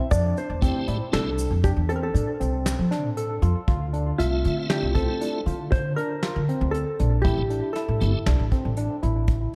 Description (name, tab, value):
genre	progressive instrumental, band music in an uneven meter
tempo	118 BPM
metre	7/4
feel	straight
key	unclear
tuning	A4 = 440 Hz
part	hollow-body jazz guitar	melody	0.0-9.6 s	F4 to E5	-32 LUFS	equal	subtle chorus, digital delay
part	barky tine electric piano	arpeggios	0.0-9.4 s	C4 to E5	-33 LUFS	equal	overdrive, lush chorus, digital delay
part	upright bass	bass	0.1-9.5 s	G1 to F3	-27 LUFS	equal	none
part	soft brush drum kit	drums	0.1-9.4 s	hi-hat, kick drum, snare drum	-29 LUFS	equal	none
part	egg shaker	percussion	0.1-2.9 s	none	-43 LUFS	equal	none
part	tonewheel organ	accompaniment	0.6-8.2 s	A3 to E5	-35 LUFS	equal	overdrive, chorus vibrato, fast rotary speaker
room	light reverb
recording	none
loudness	-24 LUFS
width	mono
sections	0.0-3.7 A section; 3.7-9.6 B section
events	none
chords	0.1 Fmaj7; 3.7 Dm7; 7.2 Am7